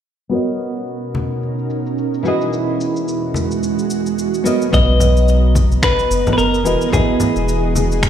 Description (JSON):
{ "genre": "sunset chillout", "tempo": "109 BPM", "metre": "4/4", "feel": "swing 57% on 16ths", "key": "B major", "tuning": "A4 = 440 Hz", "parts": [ { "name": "nylon-string guitar", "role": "accompaniment", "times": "0.3-8.1 s", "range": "E3 to D#5", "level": "-21 LUFS", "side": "equal", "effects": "auto-pan, low-pass filter, ping-pong delay" }, { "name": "ethereal airy pad", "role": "sustained chords", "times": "0.8-8.1 s", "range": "E2 to A#5", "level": "-21 LUFS", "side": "right 5 dB", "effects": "ensemble chorus, built-in reverb" }, { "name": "electronic shaker and finger snaps", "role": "drums", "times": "0.3-8.1 s", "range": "none", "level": "-25 LUFS", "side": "equal", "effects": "overdrive, low-pass filter on perc, low-pass filter on snare" }, { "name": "congas", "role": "percussion", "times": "1.1-7.9 s", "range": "none", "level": "-23 LUFS", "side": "left 1 dB", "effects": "none" }, { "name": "clean electric guitar", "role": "melody", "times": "4.7-8.1 s", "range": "G#4 to D#5", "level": "-19 LUFS", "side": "left 2 dB", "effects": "ping-pong delay" }, { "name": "warm sub bass", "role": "bass", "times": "4.7-8.1 s", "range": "E1 to B1", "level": "-16 LUFS", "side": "equal", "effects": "none" }, { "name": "electronic kick drum", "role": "drums", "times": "4.7-8.1 s", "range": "none", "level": "-19 LUFS", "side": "equal", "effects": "overdrive" } ], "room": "light reverb, digital ambience", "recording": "played on a big sound system in a bare room, large studio reverb", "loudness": "-15 LUFS", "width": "side -9 dB against mid", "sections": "0.3-4.7 A section; 4.7-8.1 B section", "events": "filter sweep on drum 0.3-4.7; filter sweep on nylon-string guitar 0.3-4.7; filter sweep on ambient pad 0.3-4.7", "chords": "0.3 Bmaj9; 2.2 Emaj9; 4.5 Bmaj9; 6.7 Emaj9" }